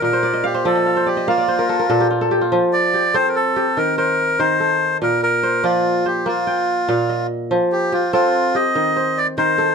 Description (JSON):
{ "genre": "west african traditional, West African string and xylophone music", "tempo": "96 BPM (dotted quarters)", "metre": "12/8", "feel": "straight", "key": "unclear", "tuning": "A4 = 443 Hz", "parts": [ { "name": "melodica", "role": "melody", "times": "0.0-9.7 s", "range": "F4 to Eb5", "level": "-18 LUFS", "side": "equal", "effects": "none" }, { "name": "kora", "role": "arpeggios", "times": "0.0-9.7 s", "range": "Bb2 to G5", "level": "-18 LUFS", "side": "equal", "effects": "none" } ], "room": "light reverb", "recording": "close, detailed microphones", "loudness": "-15 LUFS", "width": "side -5 dB against mid", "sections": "0.0-9.7 A section", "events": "kora fill 0.1-2.5", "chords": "0.0 Bb5; 2.5 F; 3.8 Eb; 5.0 Bb; 7.5 F; 8.8 Eb" }